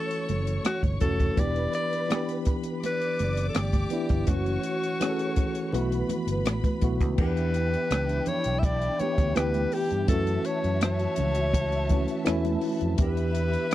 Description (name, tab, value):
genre	lush 1970s-style soul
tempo	83 BPM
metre	4/4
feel	straight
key	E dorian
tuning	A4 = 441 Hz
part	clear alto saxophone	melody	0.0-13.7 s	F#4 to E5	-30 LUFS	left 2 dB	none
part	warm studio string section	second line	0.0-13.7 s	D4 to D6	-36 LUFS	equal	none
part	tine electric piano	accompaniment	0.0-13.7 s	E3 to A4	-30 LUFS	left 1 dB	overdrive, fast stereo tremolo
part	compact cocktail drum kit	drums	0.1-13.7 s	crash cymbal, hi-hat, kick drum, rim click	-27 LUFS	equal	none
part	fingered electric bass	bass	0.3-13.6 s	E1 to G2	-28 LUFS	equal	none
part	congas	percussion	0.3-13.7 s	none	-36 LUFS	right 5 dB	none
room	little or no reverb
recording	dry, close 1970s-style studio recording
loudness	-24 LUFS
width	side -14 dB against mid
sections	0.0-7.2 A section; 7.2-13.7 B section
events	none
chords	0.0 F#m7; 1.4 Em7; 4.3 F#m7; 5.7 B7sus4; 7.2 Em7; 10.1 F#m7; 13.0 Em7